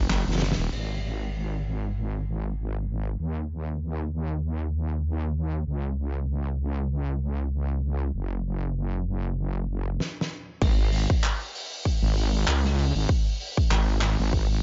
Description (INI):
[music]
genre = glitch hop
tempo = 97 BPM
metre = 4/4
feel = swing 56% on 16ths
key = unclear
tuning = A4 = 440 Hz
[part]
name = wobble bass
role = bass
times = 0.0-14.6 s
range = D#1 to D#2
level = -28 LUFS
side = equal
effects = chorus, overdrive
[part]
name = loose indie drum kit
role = drums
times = 0.1-0.9, 10.0-14.6 s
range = crash cymbal, handclaps, hi-hat, snare drum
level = -33 LUFS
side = equal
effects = none
[part]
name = electronic kick drum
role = drums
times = 10.6-14.5 s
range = none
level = -26 LUFS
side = equal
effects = none
[sound]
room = little or no reverb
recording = nothing above 7.5 kHz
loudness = -27 LUFS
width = mono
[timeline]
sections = 0.7-10.6 A section; 10.6-14.6 B section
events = drum fill 0.0-0.7, 10.0-10.6; band accent 0.5-0.8; stop 10.0-10.6; drop 10.6-14.6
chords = none